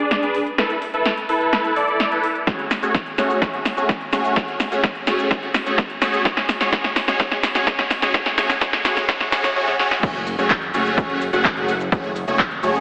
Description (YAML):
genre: EDM, festival progressive house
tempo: 127 BPM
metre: 4/4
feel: straight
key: F# minor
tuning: A4 = 437 Hz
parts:
  - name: supersaw chords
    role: riff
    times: 0.0-12.8 s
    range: G#3 to F#5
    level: -20 LUFS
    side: equal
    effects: phaser, sidechain pumping, low-pass filter, tape echo
  - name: big-room dance drum kit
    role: drums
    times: 0.1-12.8 s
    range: crash cymbal, handclaps, hi-hat, shaker, snare drum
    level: -21 LUFS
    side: equal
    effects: overdrive
  - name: electronic kick drum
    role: drums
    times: 2.5-12.5 s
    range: none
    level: -22 LUFS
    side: equal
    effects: overdrive
  - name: fat analog bass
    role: bass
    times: 10.0-12.8 s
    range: F#1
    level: -28 LUFS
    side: equal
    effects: sidechain pumping
room: wet lush hall reverb, RT60 2.3 s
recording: heavily compressed radio sound, multiband compression, high-pass filter, AM radio sound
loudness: -17 LUFS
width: side -38 dB against mid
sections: 0.0-10.0 A section; 10.0-12.8 B section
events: build-up 0.0-10.0; drum fill 0.0-9.6, 9.7-10.0; filter sweep on supersaw synth 0.0-10.0; filter sweep 0.0-10.0; drop 10.0-12.8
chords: 0.0 G#dim; 0.6 Esus4; 2.5 F#madd9; 6.3 G#7sus4; 8.1 F#madd9/A; 10.0 F#madd9